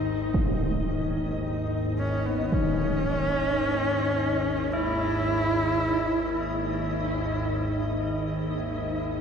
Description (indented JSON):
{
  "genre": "dark ambient drone",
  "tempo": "free time",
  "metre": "none",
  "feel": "none",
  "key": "unclear",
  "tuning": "A4 = 443 Hz",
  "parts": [
    { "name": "organ-like drone", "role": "drone", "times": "0.0-9.2 s", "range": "Ab1 to Eb2", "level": "-29 LUFS", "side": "left 1 dB", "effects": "ensemble chorus, built-in reverb" },
    { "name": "flickering grainy texture", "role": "texture", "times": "0.0-9.2 s", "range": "Eb4 to Eb5", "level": "-33 LUFS", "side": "equal", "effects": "built-in reverb, lush chorus" },
    { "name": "impact", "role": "percussion", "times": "0.3-2.7 s", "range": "none", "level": "-29 LUFS", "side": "right 1 dB", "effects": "low-pass filter on sfx" },
    { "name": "bright horsehead fiddle", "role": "melody", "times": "2.0-6.9 s", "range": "B3 to E4", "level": "-29 LUFS", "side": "right 1 dB", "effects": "diffuse ambient delay" },
    { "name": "tubular bells", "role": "arpeggios", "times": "4.7-9.2 s", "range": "E4", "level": "-34 LUFS", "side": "left 2 dB", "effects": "diffuse ambient delay" }
  ],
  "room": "wet lush hall reverb, RT60 2.8 s",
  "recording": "dreamy mix soaked in reverb",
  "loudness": "-24 LUFS",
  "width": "side -7 dB against mid",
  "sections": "0.0-9.2 A section",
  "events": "none",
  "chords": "0.3 E"
}